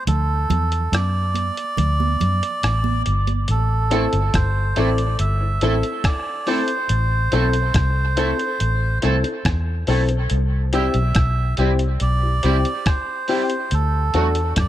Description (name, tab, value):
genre	dub reggae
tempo	70 BPM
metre	4/4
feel	straight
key	A dorian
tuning	A4 = 440 Hz
part	melodica	melody	0.0-14.7 s	A4 to E5	-24 LUFS	right 3 dB	dub echo
part	vintage muted fingered electric bass	bass	0.1-14.7 s	G1 to F#2	-19 LUFS	equal	none
part	lo-fi sampler-style drum kit	drums	0.1-14.7 s	hi-hat, kick drum, rim click	-23 LUFS	equal	none
part	congas	percussion	0.1-3.5 s	none	-29 LUFS	right 8 dB	dub echo
part	twangy electric guitar	accompaniment	3.9-14.3 s	F#3 to A4	-28 LUFS	right 4 dB	analog chorus, dub echo
part	dark baby grand piano	stabs	3.9-14.3 s	C4 to A4	-25 LUFS	left 4 dB	dub echo
room	light reverb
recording	none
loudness	-17 LUFS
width	side -13 dB against mid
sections	0.0-14.7 A section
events	break 0.0-3.5; part muted 3.5-14.7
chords	0.1 D; 3.5 Am; 10.3 C; 13.7 D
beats	| 0.07 0.93 1.78 2.63 | 3.49 4.34 5.19 6.04 | 6.90 7.75 8.60 9.45 | 10.30 11.16 12.01 12.86 | 13.72 14.57